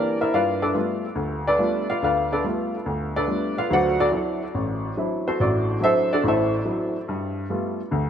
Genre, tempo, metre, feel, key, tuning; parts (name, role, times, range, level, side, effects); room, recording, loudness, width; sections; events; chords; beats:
solo jazz; 142 BPM; 4/4; swing 67% on 8ths; G mixolydian; A4 = 437 Hz
warm baby grand piano; solo; 0.0-8.1 s; A1 to F#5; -21 LUFS; equal; wide subtle chorus, analog delay
wet plate reverb, RT60 2.8 s; dreamy mix soaked in reverb; -21 LUFS; side -8 dB against mid
0.0-8.1 A section
grand piano solo 0.0-8.1
0.3 G9; 3.7 D9; 7.1 G9
| 0.32 0.74 1.16 1.59 | 2.01 2.43 2.85 3.27 | 3.70 4.12 4.54 4.96 | 5.39 5.81 6.23 6.65 | 7.07 7.50 7.92